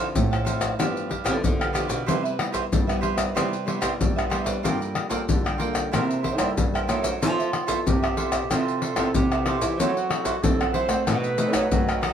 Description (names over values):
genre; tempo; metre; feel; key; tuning
samba and choro; 93 BPM; 4/4; straight; unclear; A4 = 440 Hz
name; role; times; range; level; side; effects
cavaquinho; accompaniment; 0.0-12.1 s; D4 to G5; -29 LUFS; right 6 dB; none
nylon-string guitar; accompaniment; 0.0-12.1 s; G2 to A4; -30 LUFS; left 1 dB; none
nylon-string guitar; bass; 0.2-12.1 s; G2 to C4; -28 LUFS; right 2 dB; none
maracas, surdo, pandeiro and tamborim; percussion; 0.2-12.1 s; none; -25 LUFS; left 2 dB; none
warm clarinet; second line; 7.2-12.0 s; F4 to C5; -29 LUFS; right 2 dB; none
room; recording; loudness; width
moderate studio ambience, RT60 0.5 s; band playing live in one room; -21 LUFS; side -8 dB against mid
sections
0.0-12.1 A section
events
none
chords
0.0 Dm9; 0.8 G6; 2.1 Cmaj7; 4.7 Gm9; 5.9 C6; 7.2 Fmaj9#11; 9.8 F#m7b5; 11.1 B7b9